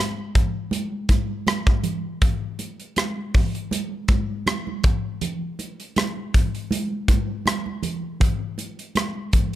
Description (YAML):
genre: soul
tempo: 80 BPM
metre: 4/4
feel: swing 54% on 16ths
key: none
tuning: none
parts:
  - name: modern studio drum kit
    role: drums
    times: 0.0-9.6 s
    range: hi-hat, kick drum, rim click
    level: -21 LUFS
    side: equal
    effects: none
  - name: congas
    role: percussion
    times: 0.4-9.5 s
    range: none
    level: -28 LUFS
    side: right 4 dB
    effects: none
room: little or no reverb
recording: none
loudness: -21 LUFS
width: side -13 dB against mid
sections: 0.0-9.6 A section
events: none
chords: none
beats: 0.73 1.48 | 2.22 2.97 3.72 4.47 | 5.22 5.96 6.71 7.46 | 8.21 8.95